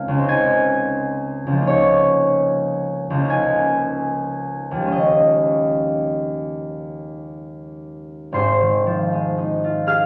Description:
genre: classical, solo harp piece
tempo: 32-43 BPM (dotted quarters)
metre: 6/8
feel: rubato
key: Ab major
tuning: A4 = 440 Hz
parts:
  - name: concert harp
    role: solo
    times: 0.0-10.1 s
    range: Ab1 to F6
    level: -20 LUFS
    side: equal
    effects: none
room: wet recital hall reverb, RT60 1.6 s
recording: nothing above 10.9 kHz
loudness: -19 LUFS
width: mono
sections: 0.0-8.3 A section; 8.3-10.1 B section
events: none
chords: 0.0 Ab6/Db; 1.7 Db69; 4.9 Eb9sus4; 8.3 Ab6

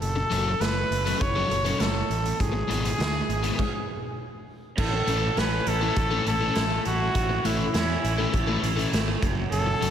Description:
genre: indie rock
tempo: 101 BPM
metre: 4/4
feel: straight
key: A major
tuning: A4 = 442 Hz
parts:
  - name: clear trumpet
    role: melody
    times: 0.0-9.9 s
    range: E4 to C#5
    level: -28 LUFS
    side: equal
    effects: tape echo
  - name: fuzz fingered electric bass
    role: bass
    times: 0.0-9.9 s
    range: F#1 to E2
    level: -28 LUFS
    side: equal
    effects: overdrive
  - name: raw garage drum kit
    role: drums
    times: 0.0-9.9 s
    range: crash cymbal, hi-hat, kick drum, snare drum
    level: -29 LUFS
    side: right 1 dB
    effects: none
  - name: crunchy overdriven guitar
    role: riff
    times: 0.2-9.9 s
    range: F#3 to A4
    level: -31 LUFS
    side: left 4 dB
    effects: ensemble chorus
  - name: raw garage guitar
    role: riff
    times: 4.8-9.9 s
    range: F#2 to A4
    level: -31 LUFS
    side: right 5 dB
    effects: overdrive, lush chorus, tape echo
room: moderate lush hall reverb, RT60 2.0 s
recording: dreamy mix soaked in reverb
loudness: -23 LUFS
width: side -9 dB against mid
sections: 0.0-4.8 A section; 4.8-9.9 A section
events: stop 3.6-4.8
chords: 0.0 F#m; 2.4 E/G#; 4.8 A; 9.2 F#m

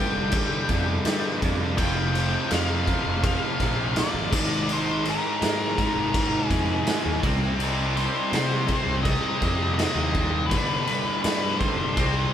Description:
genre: quiet-loud alternative rock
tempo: 82 BPM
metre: 4/4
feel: straight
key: C minor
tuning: A4 = 444 Hz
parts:
  - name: octave-fuzz lead guitar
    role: melody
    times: 0.0-12.3 s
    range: Bb4 to G5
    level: -29 LUFS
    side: left 3 dB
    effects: distortion
  - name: distorted electric guitar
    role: riff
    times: 0.0-12.3 s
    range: F2 to C4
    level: -32 LUFS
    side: left 6 dB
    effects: overdrive
  - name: distorted electric guitar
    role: riff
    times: 0.0-12.3 s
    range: F2 to C4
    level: -31 LUFS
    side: right 5 dB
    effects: distortion
  - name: fuzz picked electric bass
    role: bass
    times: 0.0-12.2 s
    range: F1 to C3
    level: -28 LUFS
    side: equal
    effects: overdrive
  - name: raw garage drum kit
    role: drums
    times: 0.3-12.1 s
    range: crash cymbal, kick drum, snare drum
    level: -26 LUFS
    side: equal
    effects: none
  - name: scooped high-gain guitar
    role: riff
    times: 1.8-12.3 s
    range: F2 to C4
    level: -32 LUFS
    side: equal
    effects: distortion
room: moderate studio reverb, RT60 0.6 s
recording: band playing live in one room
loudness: -22 LUFS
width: side -10 dB against mid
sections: 0.0-12.3 A section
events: none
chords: 0.0 G5; 1.8 F5; 4.3 Absus2; 7.2 Cm; 10.5 G

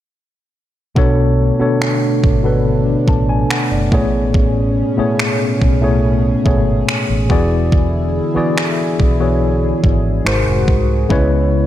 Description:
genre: contemporary R&B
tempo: 71 BPM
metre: 4/4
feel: straight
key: B dorian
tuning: A4 = 442 Hz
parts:
  - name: tine electric piano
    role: accompaniment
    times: 1.0-11.7 s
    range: G#2 to A5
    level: -16 LUFS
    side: left 2 dB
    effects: overdrive, medium stereo tremolo
  - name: chorused pulse-width pad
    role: sustained chords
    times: 1.0-11.7 s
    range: B2 to G#4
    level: -22 LUFS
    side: right 1 dB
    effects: none
  - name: vintage muted fingered electric bass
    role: bass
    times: 1.0-11.6 s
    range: E1 to C#2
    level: -18 LUFS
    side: right 1 dB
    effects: none
  - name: clean 12-bit digital drum machine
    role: drums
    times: 1.0-11.3 s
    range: finger snaps, kick drum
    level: -17 LUFS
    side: right 1 dB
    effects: overdrive
room: digital ambience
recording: none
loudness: -13 LUFS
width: side -12 dB against mid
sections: 1.0-11.7 A section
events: none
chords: 1.0 Bm9; 3.9 Amaj9; 7.3 E7; 10.3 G#7; 11.1 C#m7

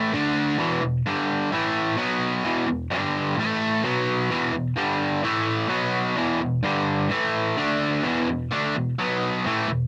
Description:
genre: rock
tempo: 129 BPM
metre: 4/4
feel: straight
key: E minor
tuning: A4 = 440 Hz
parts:
  - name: crunchy overdriven guitar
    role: solo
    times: 0.0-9.9 s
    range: E2 to D4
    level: -24 LUFS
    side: equal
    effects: cassette tape
room: moderate booth ambience, RT60 0.2 s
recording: home recording on cassette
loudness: -24 LUFS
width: mono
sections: 0.0-8.0 A section; 8.0-9.9 B section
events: none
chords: 0.1 D5; 0.6 E5; 1.1 G5; 1.5 A5; 2.0 B5; 2.5 E5; 2.9 G5; 3.4 A5; 3.9 B5; 4.3 E5; 4.8 G5; 5.2 A5; 5.7 B5; 6.2 E5; 6.6 G5; 7.1 A5; 7.6 D5; 8.0 E5; 9.0 B5

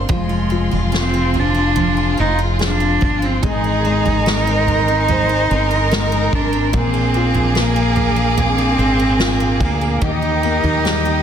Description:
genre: pop ballad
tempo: 73 BPM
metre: 4/4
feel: straight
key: unclear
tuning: A4 = 440 Hz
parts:
  - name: warm baby grand piano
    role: accompaniment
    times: 0.0-11.2 s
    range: F3 to G5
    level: -25 LUFS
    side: left 7 dB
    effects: none
  - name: dark symphonic string section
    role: sustained chords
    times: 0.0-11.2 s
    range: Ab4 to Eb6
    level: -28 LUFS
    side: left 2 dB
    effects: none
  - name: picked steel-string acoustic guitar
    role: arpeggios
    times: 0.0-11.2 s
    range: Bb2 to Bb4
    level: -26 LUFS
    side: right 5 dB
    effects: none
  - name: mellow fretless electric bass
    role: bass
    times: 0.0-11.2 s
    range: F1 to Eb2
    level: -20 LUFS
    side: equal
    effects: lush chorus
  - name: warm cello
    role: melody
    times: 0.1-11.2 s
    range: Ab3 to Eb4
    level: -18 LUFS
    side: right 1 dB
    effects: none
  - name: warm studio violin section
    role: second line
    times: 0.1-11.2 s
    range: F4 to C5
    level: -24 LUFS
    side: right 2 dB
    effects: none
  - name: unplugged drum kit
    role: drums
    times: 0.1-11.1 s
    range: kick drum, snare drum, toms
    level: -23 LUFS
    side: equal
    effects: none
room: light reverb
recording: dense, heavily limited modern master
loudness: -14 LUFS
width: side -8 dB against mid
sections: 0.0-11.2 A section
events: none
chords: 0.1 Fm; 3.4 Abadd9; 6.7 Bb; 10.0 Eb

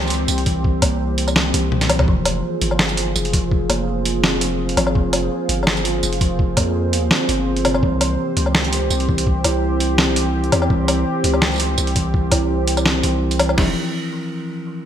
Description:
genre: half-time drum and bass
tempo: 167 BPM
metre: 4/4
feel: swing 53% on 16ths, half-time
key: F harmonic minor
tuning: A4 = 442 Hz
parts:
  - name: dark analog pad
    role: sustained chords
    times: 0.0-13.7 s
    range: C4 to C5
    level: -24 LUFS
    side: right 1 dB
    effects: chorus, sidechain pumping
  - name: long sustained 808-style bass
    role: bass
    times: 0.0-13.7 s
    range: F1 to F2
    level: -22 LUFS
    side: equal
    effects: none
  - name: boom bap sampler-style drum kit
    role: drums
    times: 0.0-13.6 s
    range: hi-hat, snare drum, tambourine, toms, woodblock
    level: -19 LUFS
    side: equal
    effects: none
  - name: kalimba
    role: arpeggios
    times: 0.5-13.7 s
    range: C3 to E4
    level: -24 LUFS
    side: left 1 dB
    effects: ping-pong delay
  - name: boom bap sampler-style drum kit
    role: drums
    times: 0.5-13.7 s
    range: crash cymbal, kick drum, snare drum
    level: -20 LUFS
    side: equal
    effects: none
room: moderate lush hall reverb, RT60 1.6 s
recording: bright 1980s-style digital production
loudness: -16 LUFS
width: side -10 dB against mid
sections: 0.0-13.6 A section; 13.6-14.9 B section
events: drop 0.0-13.6; drum fill 1.7-2.1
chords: 0.0 C; 2.1 Fm; 7.8 C; 13.6 F5

